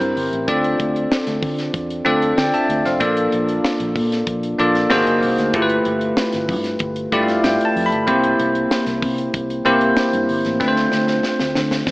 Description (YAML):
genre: polished 1980s jazz-funk pop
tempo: 95 BPM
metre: 4/4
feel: straight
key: unclear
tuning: A4 = 442 Hz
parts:
  - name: bell-like tine electric piano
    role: accompaniment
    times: 0.0-11.9 s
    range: A3 to B5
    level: -17 LUFS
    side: equal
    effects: analog chorus
  - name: vintage muted fingered electric bass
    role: bass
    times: 0.0-11.9 s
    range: F1 to D3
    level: -27 LUFS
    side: equal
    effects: none
  - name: tight funk drum kit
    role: drums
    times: 0.0-11.9 s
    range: hi-hat, kick drum, snare drum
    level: -24 LUFS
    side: equal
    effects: none
room: wet plate reverb, RT60 3.2 s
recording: dreamy mix soaked in reverb, AM radio sound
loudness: -16 LUFS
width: side -22 dB against mid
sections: 0.0-11.9 A section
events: tine electric piano fill 6.8-8.1; drum fill 10.6-11.9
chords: 0.5 Dm7; 3.0 Bbmaj7; 4.9 Ab9; 5.5 G13; 8.1 C7; 10.6 Dm7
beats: | 0.48 1.11 1.75 2.38 | 3.01 3.65 4.28 4.91 | 5.55 6.18 6.81 7.45 | 8.08 8.71 9.34 9.98 | 10.61 11.24 11.87